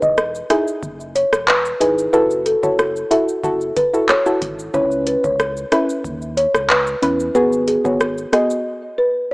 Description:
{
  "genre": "dancehall",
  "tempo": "92 BPM",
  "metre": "4/4",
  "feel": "straight",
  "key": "unclear",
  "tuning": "A4 = 440 Hz",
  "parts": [
    { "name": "folk marimba with soft mallets", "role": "melody", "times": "0.0-9.3 s", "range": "G#4 to E5", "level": "-18 LUFS", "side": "equal", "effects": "none" },
    { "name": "soft round pluck", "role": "accompaniment", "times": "0.0-8.5 s", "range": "B3 to B4", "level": "-19 LUFS", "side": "equal", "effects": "chorus, sidechain pumping" },
    { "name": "sub bass with octave", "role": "bass", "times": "0.0-8.3 s", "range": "E1 to E2", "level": "-33 LUFS", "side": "equal", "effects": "none" },
    { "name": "booming analog drum machine", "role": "drums", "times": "0.0-8.6 s", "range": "handclaps, hi-hat, kick drum, rim click, shaker", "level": "-20 LUFS", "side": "equal", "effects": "none" }
  ],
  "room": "light reverb",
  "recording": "small speaker sound",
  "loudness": "-15 LUFS",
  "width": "side -25 dB against mid",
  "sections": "0.0-9.3 A section",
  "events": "break 8.7-9.3",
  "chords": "0.0 Emaj7; 2.1 F#m7; 4.7 C#m7; 7.4 G#m7",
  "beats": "0.18 0.83 1.48 | 2.13 2.79 3.44 4.09 | 4.74 5.39 6.05 6.70 | 7.35 8.00 8.65 9.31"
}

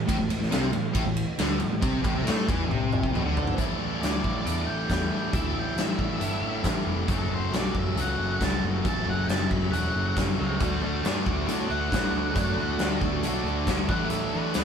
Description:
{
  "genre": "classic rock",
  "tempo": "137 BPM",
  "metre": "4/4",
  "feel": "straight",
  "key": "A major",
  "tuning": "A4 = 440 Hz",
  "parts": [
    { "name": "distorted electric guitar", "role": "riff", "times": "0.0-14.6 s", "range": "F#2 to F#4", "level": "-32 LUFS", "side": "left 5 dB", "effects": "overdrive" },
    { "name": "overdriven electric guitar", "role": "riff", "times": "0.0-3.6, 10.6-14.6 s", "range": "A2 to D4", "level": "-33 LUFS", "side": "equal", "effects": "none" },
    { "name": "sludgy distorted guitar", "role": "riff", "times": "0.0-14.6 s", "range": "F#2 to F#4", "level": "-32 LUFS", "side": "right 5 dB", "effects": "overdrive" },
    { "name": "fuzz picked electric bass", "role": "bass", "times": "0.0-14.6 s", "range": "E1 to A2", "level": "-31 LUFS", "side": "right 1 dB", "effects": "overdrive" },
    { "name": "huge arena drum kit", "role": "drums", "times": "0.1-14.6 s", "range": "hi-hat, kick drum, ride cymbal, snare drum, toms", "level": "-28 LUFS", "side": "left 1 dB", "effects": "none" },
    { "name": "octave-fuzz lead guitar", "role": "melody", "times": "4.0-14.6 s", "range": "A4 to B5", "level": "-33 LUFS", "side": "equal", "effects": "distortion" },
    { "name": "picked swing-style acoustic guitar", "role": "accompaniment", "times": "10.6-14.6 s", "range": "A2 to E4", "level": "-37 LUFS", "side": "right 5 dB", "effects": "none" }
  ],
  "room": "moderate stone room reverb, RT60 1.0 s",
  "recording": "band playing live in one room",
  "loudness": "-24 LUFS",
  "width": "side -7 dB against mid",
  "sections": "0.0-3.6 A section; 3.6-14.6 B section",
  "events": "drum fill 2.7-3.6; lead electric guitar solo 3.6-14.6",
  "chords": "0.0 A5; 3.6 Asus4; 7.1 F#m; 10.6 Dadd9; 13.9 Asus4",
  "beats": "| 0.08 0.51 0.95 1.38 | 1.82 2.25 2.69 3.13 | 3.56 4.00 4.44 4.88 | 5.32 5.76 6.20 6.64 | 7.08 7.52 7.96 8.40 | 8.84 9.28 9.72 10.16 | 10.60 11.04 11.48 11.92 | 12.36 12.79 13.23 13.67 | 14.11 14.54"
}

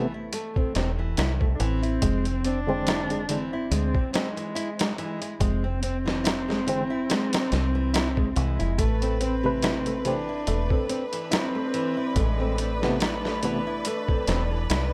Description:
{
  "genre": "trip hop",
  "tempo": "71 BPM",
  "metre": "4/4",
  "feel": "swing 55% on 16ths",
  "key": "A harmonic minor",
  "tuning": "A4 = 440 Hz",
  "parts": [
    { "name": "dark cello", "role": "melody", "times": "0.0-14.3 s", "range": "Ab3 to D4", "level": "-33 LUFS", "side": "equal", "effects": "tape echo" },
    { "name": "barky reed electric piano", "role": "accompaniment", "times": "0.0-13.6 s", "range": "C3 to B4", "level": "-31 LUFS", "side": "equal", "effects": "tremolo" },
    { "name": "nylon-string guitar", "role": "arpeggios", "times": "0.0-14.8 s", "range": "E3 to E4", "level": "-34 LUFS", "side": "equal", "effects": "vintage 12-bit sampler grit, digital delay" },
    { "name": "deep dub fingered electric bass", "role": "bass", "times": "0.0-14.9 s", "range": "E1 to D2", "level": "-30 LUFS", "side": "equal", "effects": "none" },
    { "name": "boom bap sampler-style drum kit", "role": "drums", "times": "0.3-14.9 s", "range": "hi-hat, kick drum, snare drum", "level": "-30 LUFS", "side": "equal", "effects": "none" },
    { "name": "clear chamber violin section", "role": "sustained chords", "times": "8.8-14.9 s", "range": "B4", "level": "-35 LUFS", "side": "equal", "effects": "none" },
    { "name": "wind-like tuned noise texture", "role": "texture", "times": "10.0-14.9 s", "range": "D4 to D5", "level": "-42 LUFS", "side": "equal", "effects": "built-in reverb" }
  ],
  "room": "little or no reverb",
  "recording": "none",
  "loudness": "-26 LUFS",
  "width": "mono",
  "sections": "0.0-14.9 A section",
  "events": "none",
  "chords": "0.0 Am; 2.0 Fm6; 8.8 Amadd9",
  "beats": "0.34 1.18 | 2.03 2.87 3.72 4.56 | 5.41 6.25 7.10 7.94 | 8.79 9.63 10.48 11.32 | 12.17 13.01 13.86 14.70"
}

